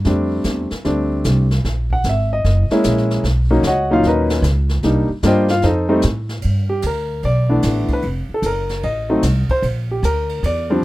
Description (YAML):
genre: jazz piano trio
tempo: 150 BPM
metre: 4/4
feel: swing 65% on 8ths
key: unclear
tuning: A4 = 439 Hz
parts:
  - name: upright bass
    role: bass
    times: 0.0-10.8 s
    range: F1 to A2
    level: -18 LUFS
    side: equal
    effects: none
  - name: jazz brush drum kit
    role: drums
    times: 0.0-10.6 s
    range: brushed snare drum, hi-hat, kick drum, ride cymbal, snare drum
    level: -28 LUFS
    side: equal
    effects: none
  - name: warm baby grand piano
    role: melody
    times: 0.1-10.8 s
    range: A#2 to G5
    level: -18 LUFS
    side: equal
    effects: none
room: little or no reverb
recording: rough home demo mix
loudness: -15 LUFS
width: side -17 dB against mid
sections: 0.0-6.4 A section; 6.4-10.8 B section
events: grand piano solo 6.4-10.8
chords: 0.0 F69; 1.6 F#9; 3.2 Bmaj9; 4.8 Cm7; 5.6 F7; 6.4 G69; 8.0 F7b9; 9.6 Bb6